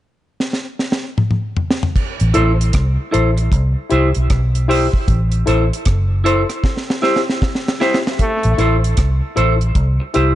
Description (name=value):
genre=dub reggae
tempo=77 BPM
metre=4/4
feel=swing 63% on 16ths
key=A dorian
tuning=A4 = 442 Hz
part: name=deep reggae drum kit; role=drums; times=0.4-10.3 s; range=crash cymbal, hi-hat, kick drum, rim click, snare drum, toms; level=-18 LUFS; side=equal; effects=none
part: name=vintage muted fingered electric bass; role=bass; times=2.2-10.3 s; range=F#1 to C2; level=-15 LUFS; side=equal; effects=none
part: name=semi-hollow electric guitar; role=accompaniment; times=2.3-10.3 s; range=E4 to C5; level=-20 LUFS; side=right 3 dB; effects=dub echo
part: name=reed electric piano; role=stabs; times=2.3-10.3 s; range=E4 to C5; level=-23 LUFS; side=left 6 dB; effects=dub echo
part: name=brilliant trombone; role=melody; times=8.2-8.6 s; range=A3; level=-23 LUFS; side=equal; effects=dub echo
room=studio reverb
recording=nothing above 10.7 kHz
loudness=-14 LUFS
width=side -13 dB against mid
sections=0.0-2.0 A section; 2.0-8.2 B section; 8.2-10.3 C section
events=drum fill 0.4-2.0, 6.6-8.2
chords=0.0 N.C.; 2.0 Am; 3.5 C; 5.1 Am; 6.6 C; 8.2 Am; 9.8 C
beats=0.40 1.18 | 1.96 2.74 3.52 4.30 | 5.08 5.86 6.64 7.42 | 8.20 8.98 9.76